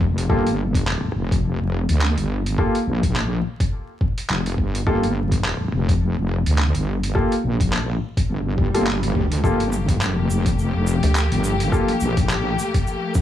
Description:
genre	glitch hop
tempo	105 BPM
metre	4/4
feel	swing 57% on 16ths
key	G minor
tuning	A4 = 439 Hz
part	wobble bass	bass	0.0-12.6 s	F1 to D2	-21 LUFS	equal	chorus, tube saturation
part	electronic kick drum	drums	0.0-13.2 s	none	-21 LUFS	equal	overdrive, small room ambience
part	boom bap sampler-style drum kit	drums	0.2-13.2 s	handclaps, hi-hat, snare drum	-28 LUFS	right 1 dB	overdrive, small room ambience
part	warm baby grand piano	stabs	0.3-11.9 s	Bb3 to A4	-25 LUFS	left 1 dB	sidechain pumping, digital delay
part	swell	sound effects	8.4-9.4 s	none	-30 LUFS	right 1 dB	none
part	clear studio string section	sustained chords	9.4-13.2 s	F3 to G4	-26 LUFS	left 4 dB	sidechain pumping
part	tube shaker	percussion	9.4-13.2 s	none	-36 LUFS	right 3 dB	none
part	rubbery square bass	bass	11.0-11.3 s	D2	-17 LUFS	equal	none
room	little or no reverb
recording	vinyl crackle, small room ambience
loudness	-18 LUFS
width	side -11 dB against mid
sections	0.0-13.2 A section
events	swell 8.4-9.4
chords	0.0 Gm9

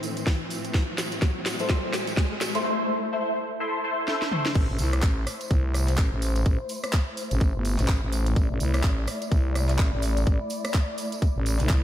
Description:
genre	bass house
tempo	126 BPM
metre	4/4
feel	swing 59% on 16ths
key	A minor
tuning	A4 = 440 Hz
part	clear studio string section	sustained chords	0.0-11.8 s	A2 to D5	-34 LUFS	left 2 dB	sidechain pumping, low-pass filter
part	garage drum kit	drums	0.0-11.8 s	crash cymbal, handclaps, hi-hat, rim click, snare drum, toms	-31 LUFS	equal	overdrive
part	tambourine	percussion	0.0-11.8 s	none	-40 LUFS	right 4 dB	none
part	riser	sound effects	0.0-2.6 s	none	-34 LUFS	left 1 dB	none
part	electronic kick drum	drums	0.3-11.8 s	none	-22 LUFS	equal	overdrive
part	band-passed chord stab	stabs	1.6-4.5 s	A3 to C5	-28 LUFS	equal	phaser, ensemble chorus, sidechain pumping, analog delay
part	growling FM bass	bass	4.6-11.8 s	G1 to C2	-24 LUFS	equal	overdrive, sidechain pumping
room	moderate lush hall reverb, RT60 1.8 s, digital ambience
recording	dreamy mix soaked in reverb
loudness	-23 LUFS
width	side -11 dB against mid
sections	0.0-4.6 A section; 4.6-11.8 B section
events	build-up 0.0-4.6; drum fill 0.0-2.6, 4.1-4.6; riser 0.0-2.6; filter sweep on synth stab 0.0-4.6; filter sweep on string section 0.0-4.6; drop 4.6-11.8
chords	0.0 Am

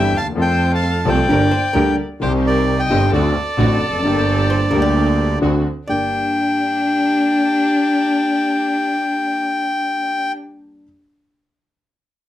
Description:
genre	tango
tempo	131 BPM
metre	4/4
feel	rubato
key	G minor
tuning	A4 = 440 Hz
part	bandoneon	melody	0.0-10.3 s	C5 to A5	-20 LUFS	left 1 dB	none
part	warm violin	second line	0.0-10.3 s	D4 to F5	-22 LUFS	left 2 dB	none
part	warm concert grand piano	accompaniment	0.0-10.8 s	G1 to A4	-19 LUFS	left 2 dB	none
part	dark studio string section	stabs	0.0-10.3 s	Bb3 to A4	-27 LUFS	right 2 dB	none
part	clear double bass	bass	0.0-6.1 s	F1 to F2	-20 LUFS	right 3 dB	none
part	archtop guitar, miked and amplified	second line	0.8-10.8 s	A4 to D5	-27 LUFS	equal	none
room	wet studio ambience, RT60 0.5 s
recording	none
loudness	-15 LUFS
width	side -13 dB against mid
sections	0.0-5.9 A section; 5.9-9.6 B section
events	none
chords	0.4 F; 1.3 Gm; 2.2 Cm; 3.1 D7; 4.0 Gm; 5.4 D7; 5.9 Gm

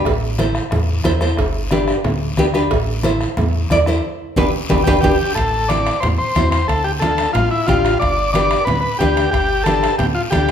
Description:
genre	latin, cumbia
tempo	181 BPM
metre	4/4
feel	straight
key	A minor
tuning	A4 = 440 Hz
part	nylon-string guitar	accompaniment	0.0-10.5 s	C4 to D5	-20 LUFS	equal	none
part	deep dub fingered electric bass	bass	0.1-10.5 s	G1 to E2	-21 LUFS	equal	none
part	bombo	percussion	0.1-10.5 s	none	-24 LUFS	equal	none
part	congas	percussion	0.1-10.5 s	none	-24 LUFS	equal	none
part	cowbell and timbales	percussion	0.1-10.5 s	none	-28 LUFS	right 4 dB	none
part	guiro	percussion	0.1-10.5 s	none	-32 LUFS	left 3 dB	none
part	overdriven combo organ	melody	4.8-10.5 s	E4 to D5	-18 LUFS	left 2 dB	none
room	wet large studio reverb, RT60 1.2 s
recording	band playing live in one room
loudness	-14 LUFS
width	side -8 dB against mid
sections	0.0-5.4 A section; 5.4-10.5 B section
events	drum fill 4.0-5.4; band accent 4.0-5.4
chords	0.1 Am; 1.4 G; 2.7 Am; 4.0 G; 5.4 Am; 6.7 Dm; 8.0 G

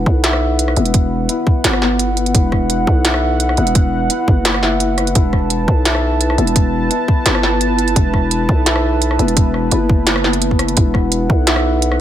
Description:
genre	half-time drum and bass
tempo	171 BPM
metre	4/4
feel	half-time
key	E minor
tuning	A4 = 440 Hz
part	dark analog pad	sustained chords	0.0-12.0 s	E4 to A5	-20 LUFS	right 1 dB	chorus, sidechain pumping
part	growling 808-style bass	bass	0.0-12.0 s	E1 to B1	-18 LUFS	equal	none
part	electronic kick drum	drums	0.1-11.4 s	none	-14 LUFS	equal	none
part	felt-muted upright piano	arpeggios	0.2-12.0 s	B3 to E5	-22 LUFS	left 6 dB	ping-pong delay
part	industrial drum kit	drums	0.2-12.0 s	hi-hat, rim click, snare drum	-18 LUFS	right 1 dB	none
room	digital ambience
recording	none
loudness	-13 LUFS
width	side -11 dB against mid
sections	0.0-12.0 A section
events	none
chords	0.0 E5

